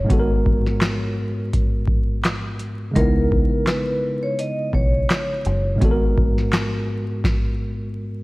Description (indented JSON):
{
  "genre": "hip hop, boom-bap hip-hop",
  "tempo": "84 BPM",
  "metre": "4/4",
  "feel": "swing 57% on 16ths",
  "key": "unclear",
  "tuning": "A4 = 440 Hz",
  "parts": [
    { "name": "vibraphone with medium hard mallets", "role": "melody", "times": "0.0-5.8 s", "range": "A#4 to D#5", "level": "-26 LUFS", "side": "equal", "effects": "tape echo" },
    { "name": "tine electric piano", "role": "accompaniment", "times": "0.0-8.2 s", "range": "G#2 to A#4", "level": "-23 LUFS", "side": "equal", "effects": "overdrive, fast stereo tremolo, cassette tape" },
    { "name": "deep dub fingered electric bass", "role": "bass", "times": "0.0-6.3 s", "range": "F#1 to C#2", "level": "-22 LUFS", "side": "equal", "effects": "none" },
    { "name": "booming analog drum machine", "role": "drums", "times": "0.1-7.4 s", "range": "handclaps, hi-hat, kick drum, snare drum", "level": "-20 LUFS", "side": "equal", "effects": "none" }
  ],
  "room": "little or no reverb",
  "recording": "worn, warbling old tape, cassette tape, vinyl crackle, warbly pitch drift",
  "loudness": "-18 LUFS",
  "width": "side -22 dB against mid",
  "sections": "0.0-8.2 A section",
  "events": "stop 7.2-8.2",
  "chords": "0.1 G#m9; 3.0 C#m9; 5.8 G#m9"
}